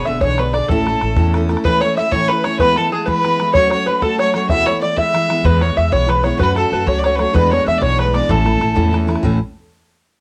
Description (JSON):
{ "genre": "celtic folk, Celtic jig", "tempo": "126 BPM (dotted quarters)", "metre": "6/8", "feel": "straight", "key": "A major", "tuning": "A4 = 442 Hz", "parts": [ { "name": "rich fiddle", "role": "melody", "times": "0.0-8.9 s", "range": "G#4 to E5", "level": "-22 LUFS", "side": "equal", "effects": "cassette tape" }, { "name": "open-back banjo", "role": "second line", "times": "0.0-8.9 s", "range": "G#4 to E5", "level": "-23 LUFS", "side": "equal", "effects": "cassette tape" }, { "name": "tin whistle", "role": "second line", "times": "0.0-8.9 s", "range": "G#5 to F#6", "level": "-26 LUFS", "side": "equal", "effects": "cassette tape" }, { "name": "picked steel-string acoustic guitar", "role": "accompaniment", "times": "0.0-9.4 s", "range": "E2 to A4", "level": "-22 LUFS", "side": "equal", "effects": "cassette tape" }, { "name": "upright bass", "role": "bass", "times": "0.1-1.5, 5.4-9.4 s", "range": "E1 to F#2", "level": "-21 LUFS", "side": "equal", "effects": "none" }, { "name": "bodhran", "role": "percussion", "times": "0.2-9.4 s", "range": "none", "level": "-25 LUFS", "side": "equal", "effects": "none" } ], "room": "moderate studio reverb, RT60 0.6 s", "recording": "home recording on cassette", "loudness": "-16 LUFS", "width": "mono", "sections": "0.0-1.6 A section; 1.6-9.2 A section", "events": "none", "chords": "0.0 E7; 0.7 A; 2.6 E; 3.5 F#m; 4.5 Esus4; 5.0 E; 6.4 F#m; 7.3 E7; 8.3 A", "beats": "0.22 | 0.69 1.17 | 1.65 2.12 | 2.60 3.07 | 3.55 4.02 | 4.50 4.97 | 5.45 5.92 | 6.40 6.87 | 7.35 7.82 | 8.30 8.77 | 9.24" }